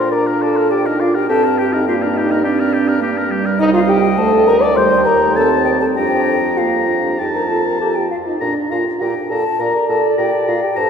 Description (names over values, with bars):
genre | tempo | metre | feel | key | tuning
quick classical-period movement for wind quintet | 102 BPM | 4/4 | rubato | Bb major | A4 = 439 Hz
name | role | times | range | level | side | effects
concert flute | melody | 0.0-10.9 s | D5 to D6 | -22 LUFS | left 5 dB | none
warm oboe | second line | 0.0-10.9 s | G4 to Bb5 | -22 LUFS | left 3 dB | none
dark clarinet | accompaniment | 0.0-10.9 s | G3 to D5 | -21 LUFS | right 4 dB | none
warm French horn | accompaniment | 0.0-10.9 s | D4 to D5 | -17 LUFS | right 1 dB | none
mellow bassoon | bass | 0.0-10.9 s | C2 to Bb2 | -22 LUFS | right 2 dB | none
room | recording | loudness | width
wet cathedral reverb, RT60 5.0 s | recorded in a church or concert hall | -13 LUFS | side -7 dB against mid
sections
0.0-10.9 A section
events
none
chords
0.0 Bb; 1.3 Gm; 3.6 Cm; 4.8 Cm/Eb; 6.0 Bb/F; 7.2 F; 8.4 Bb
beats
0.12 0.71 | 1.29 1.87 2.44 3.01 | 3.59 4.18 4.77 5.36 | 5.96 6.58 7.20 7.81 | 8.41 9.01 9.60 10.19 | 10.77